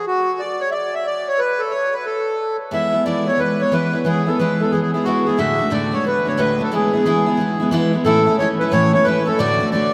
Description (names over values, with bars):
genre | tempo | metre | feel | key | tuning
celtic folk, Celtic hornpipe | 180 BPM | 4/4 | swing 65% on 8ths | E mixolydian | A4 = 440 Hz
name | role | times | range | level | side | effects
accordion | melody | 0.0-9.9 s | F#4 to E5 | -21 LUFS | equal | none
picked steel-string acoustic guitar | accompaniment | 2.7-9.9 s | D2 to F#4 | -21 LUFS | equal | none
room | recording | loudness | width
wet cathedral reverb, RT60 5.5 s | in a vast, echoing space | -18 LUFS | mono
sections
0.0-8.1 A section; 8.1-9.9 B section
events
none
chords
0.0 N.C.; 2.7 E; 5.4 D; 6.7 E; 8.1 A; 9.4 D